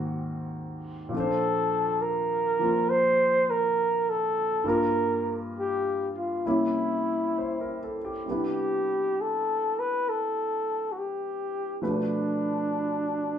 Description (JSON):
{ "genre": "jazz ballad", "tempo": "68 BPM", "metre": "4/4", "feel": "swing 66% on 8ths", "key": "C major from 8.2 s", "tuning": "A4 = 440 Hz", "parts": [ { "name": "breathy flugelhorn", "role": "melody", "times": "0.0-13.4 s", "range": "D4 to C5", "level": "-26 LUFS", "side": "equal", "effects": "none" }, { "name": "warm concert grand piano", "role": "accompaniment", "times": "0.0-13.4 s", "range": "G2 to C5", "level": "-30 LUFS", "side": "left 1 dB", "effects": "none" } ], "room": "wet studio reverb, RT60 0.6 s", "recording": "heard from further back in the room", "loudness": "-25 LUFS", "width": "side -9 dB against mid", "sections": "0.0-8.2 A section; 8.2-13.4 B section", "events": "none", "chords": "0.0 Ab9; 1.1 Bbmaj9; 4.6 Gm7; 6.4 C7b9; 8.2 Cmaj9; 11.8 Bm7b5" }